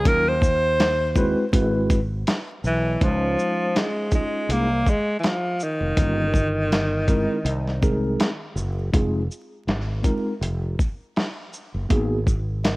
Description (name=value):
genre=hip hop, jazz-hop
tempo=81 BPM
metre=4/4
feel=swing 57% on 16ths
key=Db major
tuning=A4 = 441 Hz
part: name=breathy alto saxophone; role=melody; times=0.0-8.6 s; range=Eb3 to C5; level=-23 LUFS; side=equal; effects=none
part: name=mellow tine electric piano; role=accompaniment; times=0.0-12.8 s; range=Gb3 to Eb5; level=-25 LUFS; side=equal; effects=medium stereo tremolo
part: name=fretless electric bass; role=bass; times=0.0-12.8 s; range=F1 to Eb2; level=-25 LUFS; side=equal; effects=none
part: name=dusty soul sampler-style drum kit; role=drums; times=0.1-12.8 s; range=hi-hat, kick drum, shaker, snare drum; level=-22 LUFS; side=equal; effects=overdrive
room=light reverb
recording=worn, warbling old tape, cassette tape, vinyl crackle, warbly pitch drift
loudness=-20 LUFS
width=side -21 dB against mid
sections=0.0-3.0 A section; 3.0-12.8 B section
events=alto saxophone solo 0.0-3.0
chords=0.1 Ebm7; 1.5 Ab7alt; 3.0 Dbmaj9; 6.0 Gm7b5; 7.5 Ab9; 8.9 Fm7; 11.9 Abm9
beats=| 0.05 0.79 1.53 2.27 | 3.01 3.75 4.50 5.24 | 5.98 6.72 7.46 8.20 | 8.94 9.68 10.42 11.16 | 11.90 12.64